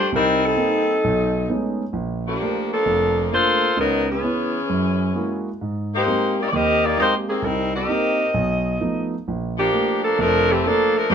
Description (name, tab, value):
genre	jazz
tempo	131 BPM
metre	4/4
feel	swing 68% on 8ths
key	unclear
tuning	A4 = 440 Hz
part	clear saxophone section	melody	0.0-11.1 s	Eb3 to Eb5	-19 LUFS	left 1 dB	none
part	warm grand piano	accompaniment	0.1-11.1 s	F1 to G4	-24 LUFS	right 2 dB	none
room	moderate club reverb, RT60 0.7 s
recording	minimal, uncompressed stereo recording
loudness	-18 LUFS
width	side -7 dB against mid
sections	0.0-11.1 A section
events	none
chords	0.1 Cm7; 1.0 B13; 1.9 Bbmaj7; 3.8 Dbm7; 4.7 Gb9; 5.6 Abmaj9; 7.4 Cm7; 8.3 B7#11; 9.3 Bbmaj7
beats	| 0.12 0.58 1.03 1.49 | 1.95 2.40 2.86 3.32 | 3.78 4.23 4.69 5.15 | 5.61 6.06 6.52 6.98 | 7.43 7.89 8.35 8.80 | 9.26 9.72 10.18 10.63 | 11.09